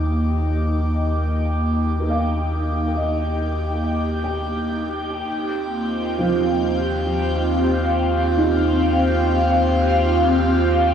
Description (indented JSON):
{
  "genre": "ambient",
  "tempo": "70 BPM",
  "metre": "3/4",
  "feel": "straight",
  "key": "Eb major",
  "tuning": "A4 = 440 Hz",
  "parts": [
    { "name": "airy breathy pad", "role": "sustained chords", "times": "0.0-10.9 s", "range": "Bb3 to D6", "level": "-20 LUFS", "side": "equal", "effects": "chorus, phaser, cassette tape" },
    { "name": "felt-muted upright piano", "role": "arpeggios", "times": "0.0-10.9 s", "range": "F3 to G5", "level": "-27 LUFS", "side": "right 3 dB", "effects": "cassette tape, tape echo" },
    { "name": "warm sub bass", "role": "bass", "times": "0.0-10.9 s", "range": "Eb2", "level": "-23 LUFS", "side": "equal", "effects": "none" }
  ],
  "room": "wet small room reverb, RT60 0.5 s",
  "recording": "home recording on cassette, small room ambience",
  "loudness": "-18 LUFS",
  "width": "side -8 dB against mid",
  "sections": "0.0-10.9 A section",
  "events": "fade-in on analog synth pad 0.0-10.9; fade-in on felt piano 0.0-10.9",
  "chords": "0.0 Ebmaj7"
}